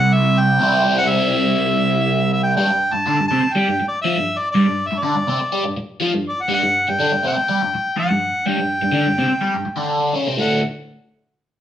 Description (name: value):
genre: rock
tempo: 122 BPM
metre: 4/4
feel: straight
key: unclear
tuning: A4 = 440 Hz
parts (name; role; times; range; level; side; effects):
- mellow harmonica; melody; 0.0-10.6 s; D5 to A5; -19 LUFS; equal; overdrive
- crunchy overdriven guitar; riff; 0.0-10.6 s; D2 to C5; -18 LUFS; equal; phaser
room: wet studio reverb, RT60 0.8 s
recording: band playing live in one room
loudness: -16 LUFS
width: side -10 dB against mid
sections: 0.0-2.6 A section; 2.6-10.4 B section; 10.4-11.6 C section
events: none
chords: 0.0 C; 2.6 G5; 10.4 D